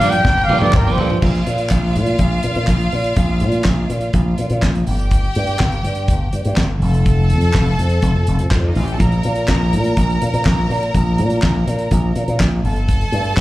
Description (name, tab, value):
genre	disco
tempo	123 BPM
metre	4/4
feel	straight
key	unclear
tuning	A4 = 436 Hz
part	breathy flugelhorn	melody	0.0-1.2 s	Bb4 to G5	-18 LUFS	equal	slapback echo
part	clear studio violin section	second line	0.0-13.4 s	C4 to Bb5	-25 LUFS	equal	slapback echo
part	electric guitar at the edge of break-up	accompaniment	0.0-1.2 s	F3 to A4	-22 LUFS	right 7 dB	slapback echo
part	overdriven reed electric piano	accompaniment	0.0-1.2 s	Bb2 to D4	-26 LUFS	left 4 dB	none
part	slap bass with an envelope filter	bass	0.0-13.4 s	F1 to Bb2	-16 LUFS	equal	none
part	damped 70s drum kit	drums	0.0-13.4 s	crash cymbal, handclaps, hi-hat, kick drum, snare drum, toms	-20 LUFS	equal	none
part	group handclap	percussion	0.7-13.4 s	none	-31 LUFS	left 1 dB	none
room	studio reverb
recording	live gig heard through the venue's PA, club reverb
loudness	-14 LUFS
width	side -17 dB against mid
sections	0.0-1.2 A section; 1.2-13.4 B section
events	flugelhorn solo 0.0-1.2; drum fill 0.2-1.2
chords	0.0 Gm7; 1.2 Bb5; 4.9 N.C.; 6.8 F; 9.0 N.C.; 12.6 Gsus2